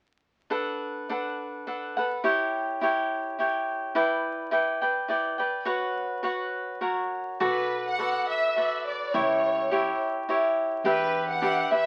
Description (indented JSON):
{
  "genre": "mexican folk, mariachi",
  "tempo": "105 BPM",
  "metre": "3/4",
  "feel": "rubato",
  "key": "B minor",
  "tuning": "A4 = 439 Hz",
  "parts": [
    { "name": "cavaquinho", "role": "accompaniment", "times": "0.5-11.9 s", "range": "D4 to G5", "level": "-28 LUFS", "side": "equal", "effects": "none" },
    { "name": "upright bass", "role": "bass", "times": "7.4-11.6 s", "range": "B1 to E2", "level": "-46 LUFS", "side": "equal", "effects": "none" },
    { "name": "rich studio violin section", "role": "melody", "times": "7.5-11.9 s", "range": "B4 to F#5", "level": "-30 LUFS", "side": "equal", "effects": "none" }
  ],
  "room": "light reverb",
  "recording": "very old 78 rpm record, vinyl crackle",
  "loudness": "-27 LUFS",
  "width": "mono",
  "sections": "0.5-7.4 A section; 7.4-11.9 B section",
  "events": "none",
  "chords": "0.5 Bm7; 2.3 C#dim; 4.0 Em7; 5.7 F#sus4; 6.8 F#; 7.4 Bm7; 9.2 C#dim; 10.9 Em7"
}